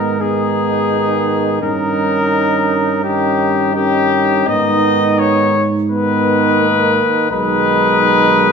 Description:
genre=classical, brass quintet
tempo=85 BPM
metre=4/4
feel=straight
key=G# minor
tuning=A4 = 438 Hz
part: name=clear trumpet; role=melody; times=0.0-8.5 s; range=G4 to D#5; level=-16 LUFS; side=left 6 dB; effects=none
part: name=clear flugelhorn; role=second line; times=0.0-8.5 s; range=D#4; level=-20 LUFS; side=right 4 dB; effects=none
part: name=brilliant trombone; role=accompaniment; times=0.0-8.5 s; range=D#3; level=-22 LUFS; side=right 5 dB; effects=none
part: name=mellow French horn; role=accompaniment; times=0.0-8.5 s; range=G#3 to C#4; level=-21 LUFS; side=equal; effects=none
part: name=mellow tuba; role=bass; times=0.0-8.5 s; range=B1 to G#2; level=-20 LUFS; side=right 4 dB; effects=none
room=wet recital hall reverb, RT60 1.3 s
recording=recorded in a church or concert hall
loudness=-12 LUFS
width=side -6 dB against mid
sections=0.0-8.5 A section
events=none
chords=0.0 G#m; 1.6 D#7/G; 4.5 G#m; 7.3 G#m/B

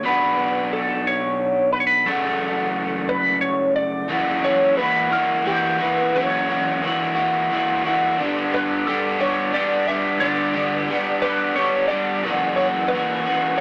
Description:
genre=rock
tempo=59 BPM (dotted quarters)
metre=6/8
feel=straight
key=unclear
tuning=A4 = 440 Hz
part: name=lightly driven lead guitar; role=melody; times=0.0-13.6 s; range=G4 to E5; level=-24 LUFS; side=equal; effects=wah
part: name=crunchy overdriven guitar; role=riff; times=0.0-13.6 s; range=F#2 to G4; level=-23 LUFS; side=equal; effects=none
room=moderate studio reverb, RT60 0.5 s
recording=none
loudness=-21 LUFS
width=mono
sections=0.0-4.1 A section; 4.1-13.6 B section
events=none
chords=0.0 Bm; 2.1 F#m; 4.1 F#7; 8.2 G; 12.3 F#7

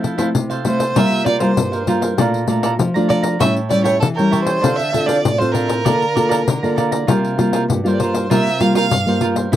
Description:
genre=samba and choro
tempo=98 BPM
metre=4/4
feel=straight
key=unclear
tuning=A4 = 439 Hz
part: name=cavaquinho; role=accompaniment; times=0.0-9.6 s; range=D4 to Bb5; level=-22 LUFS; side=right 5 dB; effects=none
part: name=nylon-string guitar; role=accompaniment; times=0.0-9.6 s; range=G2 to A4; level=-18 LUFS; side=left 1 dB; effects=none
part: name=pandeiro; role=percussion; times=0.0-9.6 s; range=none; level=-20 LUFS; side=left 5 dB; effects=none
part: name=clear violin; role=melody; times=0.7-9.2 s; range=A4 to F5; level=-20 LUFS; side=right 2 dB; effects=none
room=little or no reverb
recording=dry, close 1970s-style studio recording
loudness=-14 LUFS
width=side -12 dB against mid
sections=0.0-9.6 A section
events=none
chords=0.0 Fmaj7; 1.0 C7sus4; 2.2 Bbmaj7; 3.4 A7; 4.6 Dm7; 5.9 Bbmaj7/D; 7.1 C7sus4

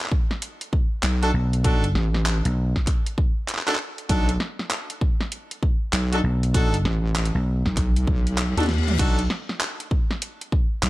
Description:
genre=glitch hop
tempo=98 BPM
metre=4/4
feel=swing 63% on 16ths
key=unclear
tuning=A4 = 440 Hz
part: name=pop drum kit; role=drums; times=0.0-10.9 s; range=crash cymbal, handclaps, hi-hat, snare drum, toms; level=-27 LUFS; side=equal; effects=none
part: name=electronic kick drum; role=drums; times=0.1-10.7 s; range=none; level=-22 LUFS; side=equal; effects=none
part: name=wobble bass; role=bass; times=1.0-10.9 s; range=A1 to D#2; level=-22 LUFS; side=equal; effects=chorus, tube saturation
part: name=bright horn section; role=stabs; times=1.2-9.2 s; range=D4 to A4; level=-29 LUFS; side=equal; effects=sidechain pumping, digital delay
part: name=vintage slap bass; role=bass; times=1.3-7.6 s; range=B1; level=-22 LUFS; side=equal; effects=none
part: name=reverse cymbal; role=sound effects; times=8.2-9.0 s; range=none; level=-35 LUFS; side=left 7 dB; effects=none
room=little or no reverb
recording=none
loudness=-21 LUFS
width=side -18 dB against mid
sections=0.0-10.9 A section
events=reverse cymbal 8.2-9.0; drum fill 8.5-9.0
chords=0.0 B7

